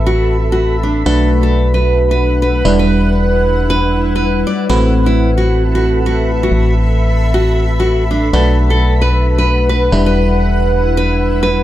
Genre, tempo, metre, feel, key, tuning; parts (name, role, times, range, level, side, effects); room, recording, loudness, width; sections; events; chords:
UK garage; 132 BPM; 4/4; swing 63% on 16ths; A dorian; A4 = 442 Hz
FM electric piano; stabs; 0.0-11.6 s; G3 to B4; -17 LUFS; equal; chorus, phaser
organ-like FM bass; bass; 0.0-11.6 s; E1 to B1; -14 LUFS; equal
granular cloud pad; texture; 0.0-11.6 s; E4 to B5; -22 LUFS; equal; built-in reverb
nylon-string guitar; melody; 0.1-11.6 s; D4 to D5; -18 LUFS; equal; tape echo
digital ambience; -11 LUFS; side -13 dB against mid
0.0-11.6 A section
0.0 Am69; 1.1 Bm7; 2.7 Em7; 4.7 Am69; 8.3 Bm7; 9.9 Em7